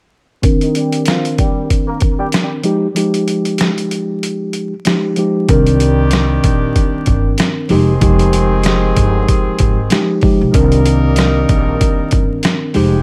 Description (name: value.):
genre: hip hop, boom-bap hip-hop.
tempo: 95 BPM.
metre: 4/4.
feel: swing 58% on 16ths.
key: C minor.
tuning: A4 = 440 Hz.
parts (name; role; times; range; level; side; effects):
mellow tine electric piano; accompaniment; 0.4-13.0 s; Eb3 to Bb4; -18 LUFS; equal; high-pass filter, low-pass filter.
boom bap sampler-style drum kit; drums; 0.4-12.9 s; hi-hat, kick drum, rim click, snare drum; -18 LUFS; equal; overdrive.
warm horn section; stabs; 0.6-13.0 s; Eb3 to C5; -24 LUFS; equal; high-pass filter, low-pass filter, delay.
upright bass; bass; 5.5-13.0 s; F1 to C2; -18 LUFS; equal; none.
room: light reverb, small room ambience.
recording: vinyl crackle.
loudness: -14 LUFS.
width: mono.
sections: 0.4-5.5 A section; 5.5-13.0 B section.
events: filter sweep 0.4-5.5; kick muted 3.0-5.5.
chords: 0.4 Cm9; 2.6 Fm9; 5.5 Cm9; 7.7 Fm9; 10.5 Cm9.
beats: | 0.44 1.07 1.70 2.33 | 2.96 3.60 4.23 4.86 | 5.49 6.12 6.75 7.38 | 8.02 8.65 9.28 9.91 | 10.54 11.17 11.81 12.44.